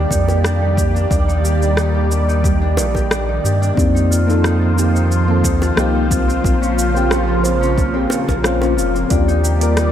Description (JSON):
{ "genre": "sunset chillout", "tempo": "90 BPM", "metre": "4/4", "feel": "straight", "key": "Eb major", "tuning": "A4 = 440 Hz", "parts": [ { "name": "lush unison pad", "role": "sustained chords", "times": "0.0-9.9 s", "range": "Db3 to D5", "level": "-21 LUFS", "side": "right 1 dB", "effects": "chorus, phaser, vintage 12-bit sampler grit" }, { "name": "Celtic harp", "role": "arpeggios", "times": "0.0-9.9 s", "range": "C4 to D5", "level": "-22 LUFS", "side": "left 1 dB", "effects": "digital delay" }, { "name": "round analog bass", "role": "bass", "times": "0.0-9.9 s", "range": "F1 to G2", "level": "-17 LUFS", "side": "equal", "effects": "none" }, { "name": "electronic kick drum", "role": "drums", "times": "0.1-9.2 s", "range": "none", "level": "-20 LUFS", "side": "equal", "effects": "overdrive, studio reverb" }, { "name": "smooth R&B drum kit", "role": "drums", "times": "0.1-9.9 s", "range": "hi-hat, rim click, shaker", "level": "-23 LUFS", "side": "right 1 dB", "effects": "overdrive, studio reverb" }, { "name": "bongos", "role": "percussion", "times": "0.3-8.7 s", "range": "none", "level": "-26 LUFS", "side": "right 1 dB", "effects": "none" }, { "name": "mellow FM electric piano", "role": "accompaniment", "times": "3.8-9.9 s", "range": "Bb3 to D5", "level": "-20 LUFS", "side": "moving between left 7 dB and right 4 dB", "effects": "chorus, phaser, auto-pan, digital delay" } ], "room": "light reverb", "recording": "none", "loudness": "-14 LUFS", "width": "side -10 dB against mid", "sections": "0.0-9.9 A section", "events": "none", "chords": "0.0 Ebmaj7; 3.8 F7sus4; 6.4 Bbmadd9; 9.1 Ebmaj7" }